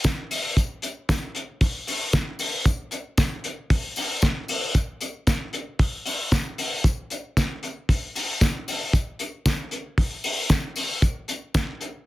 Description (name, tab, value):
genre	indie pop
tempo	115 BPM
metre	4/4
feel	straight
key	none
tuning	none
part	cloth-damped thuddy drum kit	drums	0.0-11.9 s	hi-hat, kick drum, snare drum	-22 LUFS	equal	none
part	tambourine	percussion	0.0-11.9 s	none	-36 LUFS	left 4 dB	none
room	little or no reverb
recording	dense, heavily limited modern master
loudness	-23 LUFS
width	side -17 dB against mid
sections	0.0-12.1 A section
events	none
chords	none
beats	0.04 | 0.56 1.09 1.61 2.13 | 2.66 3.18 3.70 4.23 | 4.75 5.27 5.79 6.32 | 6.84 7.36 7.89 8.41 | 8.93 9.45 9.98 10.50 | 11.02 11.54